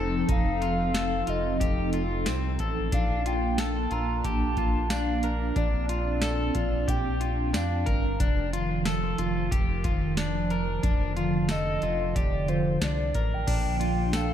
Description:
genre	dream pop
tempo	91 BPM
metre	4/4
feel	straight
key	Bb major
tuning	A4 = 440 Hz
part	hollow soft pad	sustained chords	0.0-14.3 s	D3 to A4	-30 LUFS	right 1 dB	ensemble chorus
part	electric guitar at the edge of break-up	arpeggios	0.0-14.3 s	C4 to Bb4	-32 LUFS	left 2 dB	wide subtle chorus, ping-pong delay
part	round analog bass	bass	0.0-14.3 s	F1 to F2	-30 LUFS	equal	none
part	warbly nostalgic lead	melody	0.3-14.3 s	C5 to Bb5	-32 LUFS	equal	chorus, ping-pong delay
part	booming analog drum machine	drums	0.3-14.3 s	crash cymbal, hi-hat, kick drum, snare drum, tambourine	-28 LUFS	equal	none
room	moderate lush hall reverb, RT60 1.9 s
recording	dreamy mix soaked in reverb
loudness	-24 LUFS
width	side -10 dB against mid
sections	0.0-13.5 A section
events	none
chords	0.0 F7; 2.9 Bbmaj7; 8.2 F13; 13.5 Bbmaj7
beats	| 0.28 0.94 1.60 2.26 | 2.92 3.58 4.24 4.90 | 5.56 6.22 6.88 7.54 | 8.20 8.86 9.52 10.18 | 10.83 11.49 12.15 12.81 | 13.47 14.13

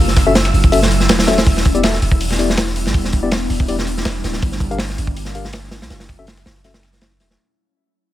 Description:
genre	drum and bass, jungle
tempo	162 BPM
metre	4/4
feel	swing 54% on 16ths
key	E dorian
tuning	A4 = 440 Hz
part	ethereal airy pad	sustained chords	0.0-7.4 s	F#3 to F4	-24 LUFS	left 1 dB	ensemble chorus, built-in reverb
part	long sustained 808-style bass	bass	0.0-7.4 s	D1 to C2	-20 LUFS	equal	none
part	wind-like tuned noise texture	texture	0.0-1.5 s	E6	-29 LUFS	right 1 dB	built-in reverb
part	crunchy breakbeat drum kit	drums	0.1-7.4 s	hi-hat, kick drum, snare drum	-16 LUFS	equal	none
part	dusty soul sampler-style drum kit	drums	0.2-7.3 s	hi-hat, snare drum	-30 LUFS	left 2 dB	high-pass filter on hats, high-pass filter on snare, high-pass filter on room
part	mellow tine electric piano	stabs	0.3-6.7 s	B3 to F5	-20 LUFS	left 4 dB	low-pass filter, dub echo
room	light reverb, small room ambience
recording	none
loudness	-14 LUFS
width	side -14 dB against mid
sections	0.0-1.5 A section; 1.5-7.4 B section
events	drop 0.0-1.5; fade-out 1.5-7.4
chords	0.0 F#m7; 1.5 Em7; 4.4 Gm7; 5.9 F#m7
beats	0.35 0.72 1.09 | 1.46 1.83 2.20 2.57 | 2.94 3.31 3.68 4.05 | 4.42 4.79 5.17 5.54 | 5.91 6.28 6.65 7.02

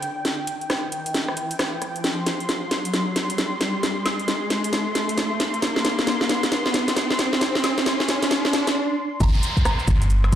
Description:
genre	UK garage, two-step garage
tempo	134 BPM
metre	4/4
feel	swing 62% on 16ths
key	G minor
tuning	A4 = 436 Hz
part	warm analog pad	sustained chords	0.0-10.4 s	G5 to C6	-30 LUFS	left 1 dB	chorus, sidechain pumping
part	house drum kit	drums	0.0-10.4 s	hi-hat, rim click, shaker, snare drum, woodblock	-23 LUFS	equal	high-pass filter on snare, high-pass filter on hats, high-pass filter on perc, high-pass filter on room
part	riser and downlifter	sound effects	0.0-10.4 s	none	-27 LUFS	equal	none
part	soft synth bell	melody	9.2-10.4 s	Bb5	-32 LUFS	right 4 dB	chorus, phaser
part	organ-like FM bass	bass	9.2-10.4 s	G1	-18 LUFS	equal	none
part	electronic kick drum	drums	9.2-10.4 s	none	-20 LUFS	equal	none
room	wet studio reverb, RT60 0.5 s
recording	played on a big sound system in a bare room, large studio reverb, vinyl crackle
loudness	-20 LUFS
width	side -10 dB against mid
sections	0.0-9.2 A section; 9.2-10.4 B section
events	build-up 0.0-9.2; drum fill 0.0-8.8; riser 0.0-8.8; break 8.8-9.2; drop 9.2-10.4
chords	0.0 N.C.; 9.2 Gsus4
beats	| 0.25 0.70 1.15 1.59 | 2.04 2.49 2.94 3.38 | 3.83 4.28 4.73 5.17 | 5.62 6.07 6.52 6.97 | 7.41 7.86 8.31 8.76 | 9.21 9.65 10.10

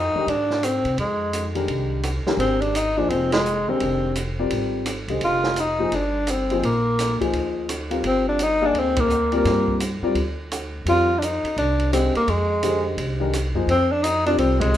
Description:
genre	modal jazz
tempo	170 BPM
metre	4/4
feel	swing 63% on 8ths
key	F dorian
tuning	A4 = 439 Hz
part	breathy tenor saxophone	melody	0.0-14.8 s	Ab3 to F4	-21 LUFS	equal	none
part	upright bass	bass	0.0-14.8 s	F1 to C3	-26 LUFS	equal	none
part	warm upright piano	accompaniment	0.2-14.7 s	D3 to F5	-25 LUFS	left 3 dB	none
part	open jazz drum kit	drums	0.3-14.8 s	hi-hat, kick drum, ride cymbal, rim click, snare drum	-29 LUFS	right 3 dB	none
room	moderate large studio reverb, RT60 0.9 s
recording	minimal, uncompressed stereo recording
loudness	-19 LUFS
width	side -11 dB against mid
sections	0.0-14.8 A section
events	band accent 3.3, 8.9, 14.6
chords	0.0 Fm9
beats	0.27 0.62 | 0.98 1.33 1.69 2.04 | 2.39 2.75 3.10 3.45 | 3.81 4.16 4.51 4.87 | 5.22 5.57 5.93 6.28 | 6.63 6.99 7.34 7.69 | 8.04 8.40 8.75 9.10 | 9.46 9.81 10.16 10.51 | 10.87 11.22 11.57 11.92 | 12.27 12.63 12.98 13.33 | 13.68 14.04 14.39 14.74

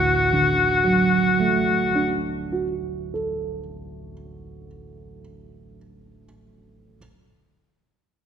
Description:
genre	classical, romantic duo for oboe and grand piano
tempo	38 BPM (dotted quarters)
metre	12/8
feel	rubato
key	D major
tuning	A4 = 439 Hz
part	clear oboe	melody	0.0-2.1 s	F#4	-20 LUFS	left 2 dB	none
part	warm concert grand piano	accompaniment	0.0-7.0 s	D1 to A4	-24 LUFS	right 3 dB	none
room	wet scoring stage reverb, RT60 1.5 s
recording	minimal, uncompressed stereo recording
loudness	-19 LUFS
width	side -8 dB against mid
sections	0.0-4.8 A section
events	none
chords	0.0 D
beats	1.59 3.18

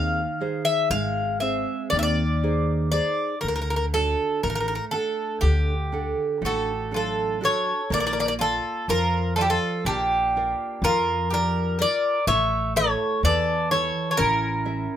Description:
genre	greek folk, Greek bouzouki band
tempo	122 BPM (eighths)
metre	9/8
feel	straight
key	unclear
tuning	A4 = 440 Hz
part	Greek bouzouki	melody	0.0-15.0 s	G4 to F5	-24 LUFS	equal	none
part	nylon-string guitar	accompaniment	0.0-15.0 s	D3 to F#5	-29 LUFS	right 4 dB	none
part	upright bass	bass	0.0-14.9 s	Ab1 to F2	-27 LUFS	equal	none
part	bowl-back mandolin	second line	6.5-15.0 s	D4 to C#5	-31 LUFS	left 3 dB	none
room	light reverb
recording	minimal, uncompressed stereo recording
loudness	-21 LUFS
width	side -10 dB against mid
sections	0.0-7.9 A section; 7.9-15.0 B section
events	speeding up 0.0-15.0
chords	0.0 Ab; 3.4 D; 7.9 Bb; 12.3 A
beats	0.40 0.91 1.42 1.93 2.43 2.94 | 3.44 3.94 4.44 4.94 5.44 5.93 6.43 6.92 7.42 | 7.91 8.40 8.89 9.38 9.86 10.35 10.83 11.31 11.80 | 12.28 12.76 13.23 13.71 14.19 14.66

